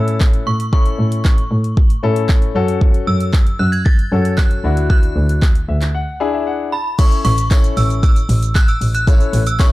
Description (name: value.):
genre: dance-pop.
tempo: 115 BPM.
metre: 4/4.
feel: straight.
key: A major.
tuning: A4 = 440 Hz.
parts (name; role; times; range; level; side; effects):
synth chime; melody; 0.0-9.7 s; B5 to A6; -23 LUFS; right 1 dB; ensemble chorus, digital delay.
warm grand piano; accompaniment; 0.0-9.7 s; C#4 to A5; -22 LUFS; left 6 dB; sidechain pumping.
rich double bass; bass; 0.0-9.7 s; A1 to A2; -18 LUFS; equal; sidechain pumping.
deep house drum kit; drums; 0.1-9.7 s; crash cymbal, handclaps, hi-hat, kick drum, shaker; -13 LUFS; equal; none.
tambourine; percussion; 7.0-9.7 s; none; -39 LUFS; right 4 dB; none.
room: digital ambience.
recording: dark, warm production.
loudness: -13 LUFS.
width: side -18 dB against mid.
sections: 0.0-7.0 A section; 7.0-9.7 B section.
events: grand piano fill 5.4-7.0; break 5.9-7.0.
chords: 0.0 A; 2.6 F#m; 4.6 Dadd9; 7.0 A.